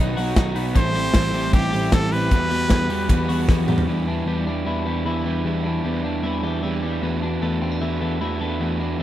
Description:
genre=jangly indie pop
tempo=153 BPM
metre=4/4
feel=straight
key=E harmonic minor, E minor from 3.9 s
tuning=A4 = 441 Hz
part: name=crunchy overdriven guitar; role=accompaniment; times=0.0-9.0 s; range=A2 to B4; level=-26 LUFS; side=right 7 dB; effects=none
part: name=twelve-string electric guitar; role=arpeggios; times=0.0-9.0 s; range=E2 to G4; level=-26 LUFS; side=left 6 dB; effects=none
part: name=tine electric piano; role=bass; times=0.0-9.0 s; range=A1 to E2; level=-26 LUFS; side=equal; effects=none
part: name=modern studio drum kit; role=drums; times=0.2-3.9 s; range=hi-hat, kick drum, ride cymbal, snare drum, toms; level=-21 LUFS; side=equal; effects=none
part: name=bright trumpet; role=melody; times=0.8-3.5 s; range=G4 to C5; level=-26 LUFS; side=equal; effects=tape echo
room=studio reverb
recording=none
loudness=-19 LUFS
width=side -12 dB against mid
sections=0.0-3.9 A section; 3.9-9.0 B section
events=drum fill 3.5-3.9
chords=0.0 B; 0.8 Am7; 2.3 Emadd9; 3.9 Em7; 7.0 Bm7/E

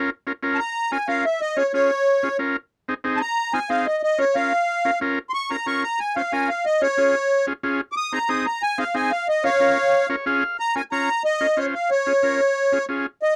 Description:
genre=latin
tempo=183 BPM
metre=4/4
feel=straight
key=Bb minor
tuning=A4 = 439 Hz
part: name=combo organ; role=accompaniment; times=0.0-13.1 s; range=C4 to F5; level=-26 LUFS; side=equal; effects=none
part: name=accordion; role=melody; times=0.5-13.4 s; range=Db5 to Eb6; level=-22 LUFS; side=equal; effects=light tremolo tuning
room=light reverb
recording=dry, close 1970s-style studio recording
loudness=-22 LUFS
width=mono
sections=0.1-10.6 A section; 10.6-13.4 B section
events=accordion solo 0.1-10.6; transistor combo organ fill 9.9-10.6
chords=0.1 Bbm; 1.4 Db; 2.7 Ab; 4.0 Bbm; 6.7 Db; 8.0 Ab; 9.3 Bbm; 11.9 Db

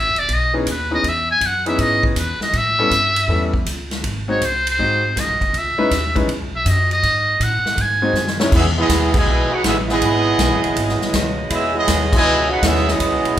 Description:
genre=jazz, big band swing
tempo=161 BPM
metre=4/4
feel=swing 66% on 8ths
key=C# minor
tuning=A4 = 441 Hz
part: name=trumpet with metal mute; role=melody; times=0.0-8.4 s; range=G#4 to G#5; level=-18 LUFS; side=equal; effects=none
part: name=upright bass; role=bass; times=0.0-13.4 s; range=E1 to A2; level=-22 LUFS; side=equal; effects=none
part: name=swinging big-band drum kit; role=drums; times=0.2-13.3 s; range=crash cymbal, hi-hat, kick drum, ride cymbal, snare drum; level=-22 LUFS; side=equal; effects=none
part: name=clear grand piano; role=accompaniment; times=0.5-8.5 s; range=E3 to D#5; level=-21 LUFS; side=left 2 dB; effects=none
part: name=clear trumpet section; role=melody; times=8.5-13.4 s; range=B3 to G#5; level=-19 LUFS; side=right 1 dB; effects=none
part: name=clear trombone section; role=second line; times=8.5-13.4 s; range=B2 to F#4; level=-21 LUFS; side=right 3 dB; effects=none
part: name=warm saxophone section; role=sustained chords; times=8.5-13.4 s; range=B2 to D#5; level=-26 LUFS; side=equal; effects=none
room=moderate large studio reverb, RT60 0.8 s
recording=band playing live in one room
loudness=-15 LUFS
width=side -11 dB against mid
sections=0.0-8.5 A section; 8.5-13.4 B section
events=muted trumpet solo 0.0-8.5; drum fill 8.1-8.5; band accent 9.1, 12.1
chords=0.0 C#m9; 2.5 A7; 4.0 G#7; 5.5 C#m9; 7.0 G#7; 8.5 C#m9

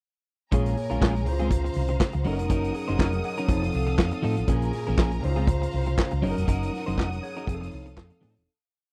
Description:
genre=disco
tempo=121 BPM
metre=4/4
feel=swing 56% on 16ths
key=Bb minor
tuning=A4 = 440 Hz
part: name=clean electric guitar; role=accompaniment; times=0.5-8.4 s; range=F3 to C5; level=-32 LUFS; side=equal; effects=vibrato effect
part: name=overdriven tine electric piano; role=accompaniment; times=0.5-8.5 s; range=Bb2 to Gb5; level=-34 LUFS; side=equal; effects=phaser
part: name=clear symphonic string section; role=sustained chords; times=0.5-8.5 s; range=A4 to Eb6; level=-39 LUFS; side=equal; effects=none
part: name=hollow-body short-scale fingered electric bass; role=bass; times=0.5-8.5 s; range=E1 to A2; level=-30 LUFS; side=equal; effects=none
part: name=vintage drum kit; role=drums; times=0.5-8.5 s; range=handclaps, hi-hat, kick drum, snare drum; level=-28 LUFS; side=equal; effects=none
room=little or no reverb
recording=none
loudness=-26 LUFS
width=mono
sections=0.5-8.5 verse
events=fade-out 6.5-8.5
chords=0.5 Bbm7; 1.3 Dbmaj7; 2.3 Gb6; 3.5 F7; 4.5 Bbm7; 5.2 Dbmaj7; 6.2 Gb6; 7.5 F7

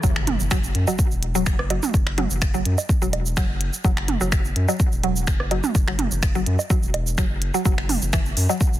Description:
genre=minimal techno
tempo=126 BPM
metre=4/4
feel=straight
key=unclear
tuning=A4 = 438 Hz
part: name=mallet-like synth pluck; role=riff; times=0.0-8.6 s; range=E3 to F#3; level=-28 LUFS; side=equal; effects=chorus, phaser, sidechain pumping, digital delay
part: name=saturated sub bass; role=bass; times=0.0-8.8 s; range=E1 to F#2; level=-24 LUFS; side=equal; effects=sidechain pumping
part: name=electronic kick drum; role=drums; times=0.0-8.7 s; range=none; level=-21 LUFS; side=equal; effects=overdrive
part: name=minimal click drum kit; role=drums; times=0.0-8.8 s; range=finger snaps, hi-hat, shaker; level=-28 LUFS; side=right 1 dB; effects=overdrive, soft clipping on snare
part: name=impact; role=sound effects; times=0.1-1.9 s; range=none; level=-33 LUFS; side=left 1 dB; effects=none
part: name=techno drum kit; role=percussion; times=0.3-8.6 s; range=rim click, toms, woodblock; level=-27 LUFS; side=right 6 dB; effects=dub echo
room=digital ambience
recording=dense, heavily limited modern master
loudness=-19 LUFS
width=side -14 dB against mid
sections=0.0-8.8 A section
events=drop 0.0-8.8; impact 0.0-1.9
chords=0.0 F#5

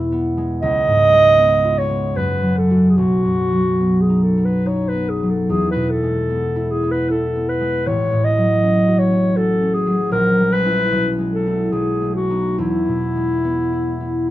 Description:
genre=classical, romantic duo for clarinet and harp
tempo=69-81 BPM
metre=3/4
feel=rubato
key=E major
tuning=A4 = 440 Hz
part: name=concert harp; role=accompaniment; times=0.0-14.3 s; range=A1 to F#4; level=-18 LUFS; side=equal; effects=none
part: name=mellow clarinet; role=melody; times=0.6-14.3 s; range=E4 to D#5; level=-18 LUFS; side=right 1 dB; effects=none
room=moderate recital hall reverb, RT60 1.5 s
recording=close, detailed microphones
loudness=-15 LUFS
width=side -14 dB against mid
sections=0.0-14.3 A section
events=none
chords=0.0 E; 0.6 C#7; 2.2 F#m; 3.0 B; 5.5 E; 7.8 F#m/A; 10.1 A#dim7; 10.9 E/B; 11.7 B7; 12.6 E

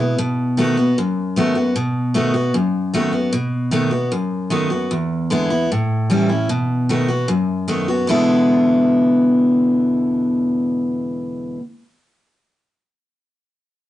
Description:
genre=rock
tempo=152 BPM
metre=4/4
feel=straight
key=E major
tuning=A4 = 440 Hz
part: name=picked steel-string acoustic guitar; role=solo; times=0.0-11.6 s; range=E2 to F#4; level=-16 LUFS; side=equal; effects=none
room=moderate small room reverb, RT60 0.5 s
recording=rough rehearsal-room recording, warm saturation, nothing above 10.4 kHz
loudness=-16 LUFS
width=side -14 dB against mid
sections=0.0-8.1 A section; 8.1-11.3 B section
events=none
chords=0.2 B7; 4.9 E7; 5.7 A7; 6.5 B7; 8.1 E7

